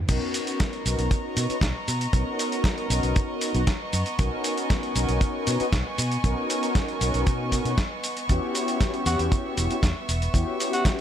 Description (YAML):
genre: nu-disco, nu disco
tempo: 117 BPM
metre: 4/4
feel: straight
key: B major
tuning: A4 = 440 Hz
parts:
  - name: mellow synth brass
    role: accompaniment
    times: 0.1-11.0 s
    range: B3 to B4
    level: -29 LUFS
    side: left 2 dB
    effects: chorus, sidechain pumping, slapback echo
  - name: clear studio violin section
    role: sustained chords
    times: 0.1-11.0 s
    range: B3 to C#6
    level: -31 LUFS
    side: right 1 dB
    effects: sidechain pumping
  - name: fingered electric bass with an envelope filter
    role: bass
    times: 0.1-10.4 s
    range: E1 to B2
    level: -26 LUFS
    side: equal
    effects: none
  - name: dusty soul sampler-style drum kit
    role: drums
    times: 0.1-11.0 s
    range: crash cymbal, hi-hat, shaker, snare drum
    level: -30 LUFS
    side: equal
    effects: overdrive
  - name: kick drum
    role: drums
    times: 0.1-11.0 s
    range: none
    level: -23 LUFS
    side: equal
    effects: none
  - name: breathy tenor saxophone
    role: melody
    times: 9.1-10.8 s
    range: F#4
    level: -30 LUFS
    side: equal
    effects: tape echo
room: little or no reverb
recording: none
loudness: -22 LUFS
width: side -10 dB against mid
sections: 0.1-11.0 A section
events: drop 0.1-11.0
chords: 0.1 Bmaj9; 8.3 Em6